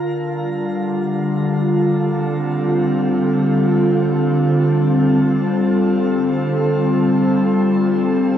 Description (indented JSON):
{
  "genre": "ambient",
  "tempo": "free time",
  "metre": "none",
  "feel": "none",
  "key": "unclear",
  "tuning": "A4 = 440 Hz",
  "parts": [
    { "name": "glassy FM pad", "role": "solo", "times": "0.0-8.4 s", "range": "D3 to A4", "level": "-15 LUFS", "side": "equal", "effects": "ensemble chorus, built-in reverb" }
  ],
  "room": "wet shimmer reverb, RT60 9.8 s",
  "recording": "none",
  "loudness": "-15 LUFS",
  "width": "side -10 dB against mid",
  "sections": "0.0-8.4 A section",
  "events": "none",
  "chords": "0.0 Dm",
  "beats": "free time"
}